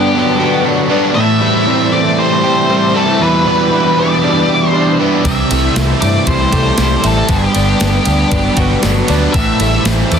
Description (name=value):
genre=rock, shoegaze and dream pop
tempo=117 BPM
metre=4/4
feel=straight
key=G major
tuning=A4 = 440 Hz
part: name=octave-fuzz lead guitar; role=melody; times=0.0-10.2 s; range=G4 to E5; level=-17 LUFS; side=left 1 dB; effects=distortion, slapback echo
part: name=string machine, full ensemble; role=sustained chords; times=0.0-10.2 s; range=B4 to E6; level=-24 LUFS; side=left 1 dB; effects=ensemble chorus
part: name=direct-recorded clean electric guitar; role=arpeggios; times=0.0-10.2 s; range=E3 to G4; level=-21 LUFS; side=right 7 dB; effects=lush chorus, slapback echo
part: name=distorted electric guitar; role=riff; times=0.0-10.2 s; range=E2 to C4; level=-19 LUFS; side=equal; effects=overdrive
part: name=overdriven electric guitar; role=riff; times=0.0-10.2 s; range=G2 to B4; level=-17 LUFS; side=left 10 dB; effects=ensemble chorus
part: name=overdriven semi-hollow guitar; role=riff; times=0.0-10.2 s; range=E2 to A4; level=-18 LUFS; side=right 11 dB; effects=reverse reverb
part: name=clean 12-bit digital drum machine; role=drums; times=5.2-10.2 s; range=kick drum, ride cymbal, snare drum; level=-19 LUFS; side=equal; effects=none
part: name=vintage muted fingered electric bass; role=bass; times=5.3-10.2 s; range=G1 to G2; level=-16 LUFS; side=equal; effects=none
part: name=tambourine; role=percussion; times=5.3-10.2 s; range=none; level=-32 LUFS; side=left 9 dB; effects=none
room=light reverb, digital ambience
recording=dense, heavily limited modern master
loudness=-10 LUFS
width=side -7 dB against mid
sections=0.0-10.2 A section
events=none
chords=0.0 Gmaj7; 1.2 Am7; 3.2 Em7; 5.3 C6; 7.3 Gmaj7; 9.3 Am7